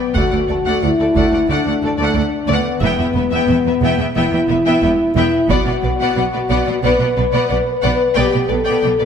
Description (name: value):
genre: cinematic, epic orchestral film score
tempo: 90 BPM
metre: 4/4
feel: straight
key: B minor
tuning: A4 = 440 Hz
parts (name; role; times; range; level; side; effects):
- mellow French horn section; sustained chords; 0.0-9.1 s; B3 to B4; -17 LUFS; left 3 dB; none
- rich symphonic violin section; melody; 0.1-9.1 s; D5 to G5; -25 LUFS; left 2 dB; none
- warm symphonic viola section; accompaniment; 0.1-9.1 s; A3 to B3; -23 LUFS; right 2 dB; none
- rich symphonic cello section; bass; 0.1-9.1 s; D2 to B2; -22 LUFS; right 4 dB; none
- dark studio violin section; second line; 0.2-9.1 s; A4 to E5; -24 LUFS; left 3 dB; none
- rich symphonic double bass section; bass; 0.2-8.9 s; E1 to D2; -23 LUFS; right 5 dB; none
- taiko ensemble; drums; 0.2-1.5, 5.5-6.8 s; none; -24 LUFS; right 1 dB; none
room: wet concert hall reverb, RT60 2.0 s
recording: none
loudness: -14 LUFS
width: side -7 dB against mid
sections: 0.0-9.1 A section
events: none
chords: 0.2 D; 2.8 Em; 5.5 Bm; 8.2 G/B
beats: | 0.16 0.83 1.50 2.16 | 2.83 3.50 4.17 4.83 | 5.50 6.17 6.83 7.50 | 8.17 8.84